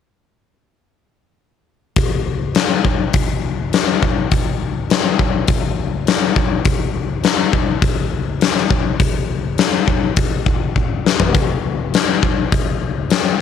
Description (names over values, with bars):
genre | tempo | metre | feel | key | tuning
rock | 102 BPM | 4/4 | straight | none | none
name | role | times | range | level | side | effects
huge arena drum kit | drums | 2.0-13.2 s | hi-hat, kick drum, snare drum, toms | -15 LUFS | left 3 dB | none
room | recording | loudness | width
light reverb | 1960s-style stereo | -15 LUFS | side -8 dB against mid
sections
2.0-13.4 A section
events
drum fill 10.8-11.3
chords
none